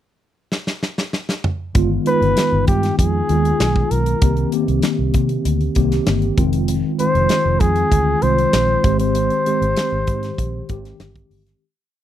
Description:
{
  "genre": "polished 1980s jazz-funk pop",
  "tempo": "97 BPM",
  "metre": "4/4",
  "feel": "straight",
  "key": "unclear",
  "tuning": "A4 = 440 Hz",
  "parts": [
    { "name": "modern studio drum kit", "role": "drums", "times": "0.5-11.6 s", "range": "hi-hat, kick drum, snare drum, toms", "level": "-20 LUFS", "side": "equal", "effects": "none" },
    { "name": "mellow tine electric piano", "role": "accompaniment", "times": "1.7-11.6 s", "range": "Eb3 to G4", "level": "-20 LUFS", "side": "equal", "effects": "medium stereo tremolo, lush chorus" },
    { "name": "vintage muted fingered electric bass", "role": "bass", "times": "1.8-11.5 s", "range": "F1 to C3", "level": "-20 LUFS", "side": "equal", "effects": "none" },
    { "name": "breathy flugelhorn", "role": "melody", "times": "2.1-11.0 s", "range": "G4 to C5", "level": "-19 LUFS", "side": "equal", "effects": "slapback echo" }
  ],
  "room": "light reverb",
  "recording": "dry, close 1970s-style studio recording",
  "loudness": "-15 LUFS",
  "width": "side -11 dB against mid",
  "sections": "0.0-1.8 pickup bar; 1.8-11.6 verse",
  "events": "drum fill 0.5-1.8; fade-out 9.2-11.6",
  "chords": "0.0 N.C.; 1.8 G7b9b13; 4.2 Cm7; 6.4 Fm7; 8.8 Abmaj7",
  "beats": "0.52 1.13 | 1.75 2.37 2.99 3.60 | 4.22 4.84 5.45 6.07 | 6.69 7.30 7.92 8.54 | 9.15 9.77 10.39 11.00"
}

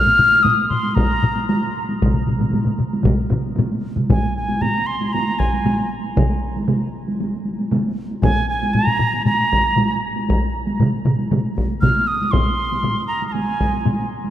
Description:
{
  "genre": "japanese traditional, taiko drum ensemble",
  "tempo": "116 BPM",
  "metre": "4/4",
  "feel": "straight",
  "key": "Bb suspended pentatonic",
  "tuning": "A4 = 439 Hz",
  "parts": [
    { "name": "wooden piccolo", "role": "melody", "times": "0.0-14.1 s", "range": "Ab5 to F6", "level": "-20 LUFS", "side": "equal", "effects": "none" },
    { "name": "taiko ensemble", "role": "percussion", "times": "0.1-14.0 s", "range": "none", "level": "-23 LUFS", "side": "left 2 dB", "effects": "none" },
    { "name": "taiko ensemble", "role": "percussion", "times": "0.2-14.3 s", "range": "none", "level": "-23 LUFS", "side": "right 1 dB", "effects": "none" },
    { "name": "solo taiko drums", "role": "percussion", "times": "1.0-13.7 s", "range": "none", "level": "-24 LUFS", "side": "left 1 dB", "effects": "none" },
    { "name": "taiko ensemble", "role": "percussion", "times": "2.0-11.9 s", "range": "none", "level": "-24 LUFS", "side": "right 3 dB", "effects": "none" }
  ],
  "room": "wet cathedral reverb, RT60 5.2 s",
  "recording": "in a vast, echoing space",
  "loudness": "-17 LUFS",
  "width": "side -11 dB against mid",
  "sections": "0.0-4.1 A section; 4.1-14.3 B section",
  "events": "speeding up 0.0-14.3",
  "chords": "none",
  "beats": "0.45 0.97 1.49 | 2.01 2.53 3.06 3.58 | 4.09 4.61 5.13 5.65 | 6.17 6.68 7.20 7.71 | 8.23 8.74 9.26 9.77 | 10.28 10.80 11.31 11.82 | 12.33 12.84 13.35 13.86"
}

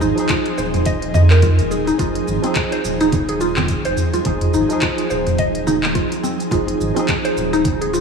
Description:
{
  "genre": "organic downtempo",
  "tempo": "106 BPM",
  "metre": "4/4",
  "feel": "swing 58% on 16ths",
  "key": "F minor pentatonic",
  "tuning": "A4 = 439 Hz",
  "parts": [
    { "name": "tine electric piano", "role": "accompaniment", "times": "0.0-8.0 s", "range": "F3 to Ab4", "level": "-23 LUFS", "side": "right 3 dB", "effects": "overdrive, fast stereo tremolo, sidechain pumping, tape echo, slapback echo" },
    { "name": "ethereal airy pad", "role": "sustained chords", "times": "0.0-8.0 s", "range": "F3 to Ab4", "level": "-25 LUFS", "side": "left 1 dB", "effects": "ensemble chorus, built-in reverb, sidechain pumping" },
    { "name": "mallet-like synth pluck", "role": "arpeggios", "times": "0.0-8.0 s", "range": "C4 to Eb5", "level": "-21 LUFS", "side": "equal", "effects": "wide subtle chorus, tape echo, slapback echo" },
    { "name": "warm sub bass", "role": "bass", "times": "0.0-8.0 s", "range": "Eb1 to F2", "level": "-20 LUFS", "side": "equal", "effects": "sidechain pumping" },
    { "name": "afro-pop drum kit", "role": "drums", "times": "0.0-8.0 s", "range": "cabasa, handclaps, hi-hat, toms", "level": "-24 LUFS", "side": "equal", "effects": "none" },
    { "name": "congas", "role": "percussion", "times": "0.0-8.0 s", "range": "none", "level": "-30 LUFS", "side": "right 3 dB", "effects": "none" },
    { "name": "electronic kick drum", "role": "drums", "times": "0.3-7.8 s", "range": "none", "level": "-23 LUFS", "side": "left 1 dB", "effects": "none" }
  ],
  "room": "moderate lush hall reverb, RT60 1.6 s",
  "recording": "big arena sound",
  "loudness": "-15 LUFS",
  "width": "side -5 dB against mid",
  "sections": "0.0-8.0 A section",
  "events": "none",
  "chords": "0.0 Fm7",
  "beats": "0.29 0.86 1.43 | 1.99 2.56 3.12 3.69 | 4.25 4.82 5.39 5.95 | 6.52 7.08 7.65"
}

